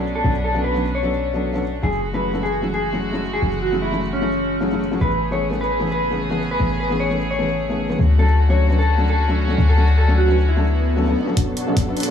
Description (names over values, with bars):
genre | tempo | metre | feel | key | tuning
future bass | 151 BPM | 4/4 | swing 55% on 16ths, half-time | F# minor | A4 = 439 Hz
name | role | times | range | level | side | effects
felt-muted upright piano | accompaniment | 0.0-12.0 s | E3 to B4 | -24 LUFS | left 2 dB | sidechain pumping
rich chamber string section | sustained chords | 0.0-12.1 s | C#3 to A4 | -28 LUFS | right 2 dB | sidechain pumping, low-pass filter
warm 808-style bass | bass | 0.0-11.2 s | F#1 to D2 | -20 LUFS | left 1 dB | sidechain pumping
mellow electric guitar | melody | 0.2-11.3 s | C#4 to C#5 | -23 LUFS | equal | sidechain pumping, digital delay
swell and riser | sound effects | 10.7-12.1 s | none | -27 LUFS | right 1 dB | none
dense compressed supersaw | riff | 11.4-12.1 s | B3 to E5 | -23 LUFS | right 2 dB | sidechain pumping, low-pass filter
electronic hi-hat | drums | 11.4-12.1 s | none | -28 LUFS | right 2 dB | overdrive, low-pass filter on hats, low-pass filter on perc, low-pass filter on snare, low-pass filter on cymbals, low-pass filter on room
electronic kick drum | drums | 11.4-11.9 s | none | -20 LUFS | equal | overdrive
room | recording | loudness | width
light reverb, digital ambience | small room ambience | -17 LUFS | side -8 dB against mid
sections
0.0-11.4 A section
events
filter sweep on string section 0.0-11.4; swell 10.7-11.4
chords
0.0 Bm9; 1.8 F#m9; 5.0 Amaj9; 8.0 Dmaj7; 11.4 Bm9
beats
| 0.24 0.64 1.04 1.44 | 1.83 2.23 2.63 3.03 | 3.42 3.82 4.22 4.62 | 5.01 5.41 5.81 6.21 | 6.60 7.00 7.40 7.79 | 8.19 8.59 8.99 9.38 | 9.78 10.18 10.58 10.97 | 11.37 11.77